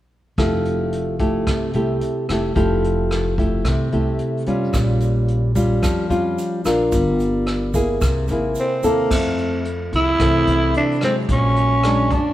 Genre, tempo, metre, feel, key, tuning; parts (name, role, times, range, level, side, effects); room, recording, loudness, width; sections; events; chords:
bossa nova; 110 BPM; 4/4; straight; F major; A4 = 441 Hz
nylon-string guitar; accompaniment; 0.4-12.3 s; F2 to Bb4; -20 LUFS; left 1 dB
upright bass; bass; 0.4-12.3 s; F1 to F#2; -22 LUFS; equal
vintage brush drum kit; drums; 0.4-12.2 s; crash cymbal, hi-hat, kick drum, rim click; -25 LUFS; equal
tube shaker; percussion; 4.7-9.1 s; -39 LUFS; right 6 dB
growling tenor saxophone; melody; 8.6-12.3 s; A3 to E4; -19 LUFS; right 1 dB
moderate echo chamber reverb, RT60 1.9 s; heard from further back in the room, faint mains hum; -17 LUFS; side -14 dB against mid
0.4-9.1 A section; 9.1-12.3 B section
0.4 Fmaj9; 4.7 Bbm6; 6.9 Gm7; 8.0 C7alt; 9.1 Fmaj7; 11.3 Bb7alt